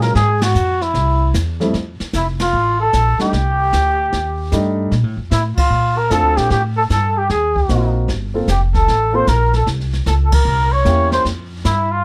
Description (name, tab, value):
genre	jazz, small-group swing and bop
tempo	151 BPM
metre	4/4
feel	swing 66% on 8ths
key	F major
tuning	A4 = 441 Hz
part	trumpet with cup mute	melody	0.0-12.0 s	E4 to Db5	-20 LUFS	equal	none
part	breathy trumpet	second line	0.0-12.0 s	E4 to Db5	-26 LUFS	equal	none
part	warm upright piano	accompaniment	0.0-11.3 s	F2 to A4	-23 LUFS	equal	none
part	upright bass	bass	0.0-12.0 s	F1 to Bb2	-20 LUFS	equal	none
part	jazz brush drum kit	drums	0.0-12.0 s	brushed snare drum, hi-hat, kick drum, ride cymbal, snare drum	-25 LUFS	equal	none
room	light reverb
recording	none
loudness	-16 LUFS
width	mono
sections	0.0-1.7 A section; 1.7-12.0 B section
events	band accent 0.3, 2.3, 5.5, 10.3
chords	0.1 Fmmaj7; 0.9 C; 1.7 F; 3.3 Cm69; 4.9 Bbmaj9; 6.5 Gsus2; 7.3 Ab9; 8.1 Gm11; 9.7 C7b9; 11.3 Fsus2